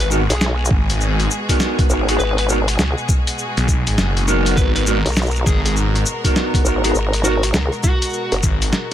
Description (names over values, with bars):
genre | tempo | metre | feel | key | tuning
glitch hop | 101 BPM | 4/4 | swing 63% on 16ths | G# minor | A4 = 440 Hz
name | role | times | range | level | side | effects
fuzz lead guitar | melody | 0.0-8.3 s | F#4 to B4 | -27 LUFS | left 1 dB | distortion, vintage 12-bit sampler grit, ping-pong delay
clear symphonic string section | sustained chords | 0.0-8.9 s | B2 to A#4 | -26 LUFS | left 1 dB | sidechain pumping
phased detuned saw bass | bass | 0.0-8.7 s | F#1 to B1 | -18 LUFS | equal | phaser
boom bap sampler-style drum kit | drums | 0.0-8.9 s | hi-hat, rim click, shaker, snare drum | -22 LUFS | left 1 dB | none
mellow electric guitar | stabs | 0.1-8.9 s | B3 to A#4 | -22 LUFS | right 2 dB | sidechain pumping, ping-pong delay
vowel-sweep wobble bass | bass | 0.3-8.4 s | F#1 to C#2 | -19 LUFS | equal | chorus
electronic kick drum | drums | 0.7-8.6 s | none | -18 LUFS | equal | none
room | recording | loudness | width
little or no reverb | none | -15 LUFS | side -11 dB against mid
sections
0.0-8.9 A section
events
none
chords
0.0 G#m9